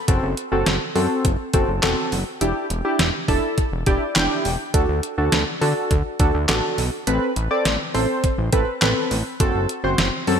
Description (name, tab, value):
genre	synth-pop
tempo	103 BPM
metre	4/4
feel	straight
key	unclear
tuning	A4 = 442 Hz
part	warm analog keys	accompaniment	0.0-10.4 s	C4 to G5	-22 LUFS	equal	chorus
part	fat analog bass	bass	0.1-10.4 s	E1 to D3	-24 LUFS	equal	none
part	detuned 8-bit digital drum machine	drums	0.1-10.4 s	handclaps, hi-hat, kick drum, snare drum	-22 LUFS	equal	overdrive, gated reverb
room	moderate lush hall reverb, RT60 2.1 s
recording	bright 1980s-style digital production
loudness	-18 LUFS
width	side -7 dB against mid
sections	0.0-10.4 A section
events	synth keys fill 3.6-4.7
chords	0.1 F#dim; 2.4 Em7; 4.7 D; 7.1 Amadd9; 9.4 F#dim